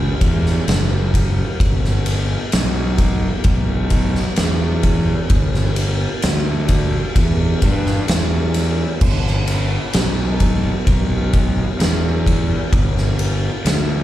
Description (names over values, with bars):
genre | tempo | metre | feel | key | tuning
stoner and doom metal | 65 BPM | 4/4 | straight | unclear | A4 = 442 Hz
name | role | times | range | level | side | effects
fuzz fingered electric bass | bass | 0.0-14.0 s | F#1 to G2 | -18 LUFS | equal | overdrive
oversized low-tuned drum kit | drums | 0.2-13.9 s | crash cymbal, kick drum, ride cymbal, snare drum | -18 LUFS | equal | none
room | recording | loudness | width
little or no reverb | live gig heard through the venue's PA, recital hall reverb | -15 LUFS | side -13 dB against mid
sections
0.0-14.0 A section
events
none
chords
none